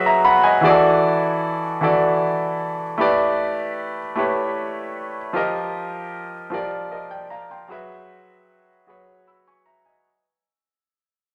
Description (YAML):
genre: R&B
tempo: 51 BPM (dotted quarters)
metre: 6/8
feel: straight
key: unclear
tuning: A4 = 439 Hz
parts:
  - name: clear concert grand piano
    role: solo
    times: 0.0-10.2 s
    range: E3 to E6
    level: -21 LUFS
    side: equal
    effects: none
room: wet large studio reverb, RT60 1.3 s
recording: none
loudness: -20 LUFS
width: mono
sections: 0.6-10.0 A section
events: fade-out 0.6-10.0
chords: 0.0 F#9sus4; 0.6 E9sus4; 3.0 A9sus4; 5.3 F9sus4; 7.7 F#9sus4